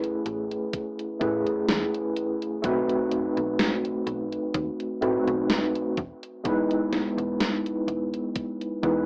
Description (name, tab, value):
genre	vaporwave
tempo	63 BPM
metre	4/4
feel	swing 54% on 16ths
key	unclear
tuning	A4 = 439 Hz
part	overdriven tine electric piano	accompaniment	0.0-9.1 s	G#3 to B4	-25 LUFS	equal	medium tremolo, analog chorus, analog delay
part	slap-like FM bass	bass	0.0-9.1 s	E1 to A2	-35 LUFS	equal	none
part	gated 80s digital drum machine	drums	0.0-9.0 s	hi-hat, snare drum	-27 LUFS	equal	gated reverb, gated reverb snare
part	electronic kick drum	drums	0.7-9.0 s	none	-33 LUFS	equal	none
room	wet small room reverb, RT60 0.5 s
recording	rough home demo mix, cassette tape, AM radio sound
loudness	-24 LUFS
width	side -36 dB against mid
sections	0.0-9.1 A section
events	none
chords	0.0 Amaj9; 2.6 B7b9; 6.0 Emaj7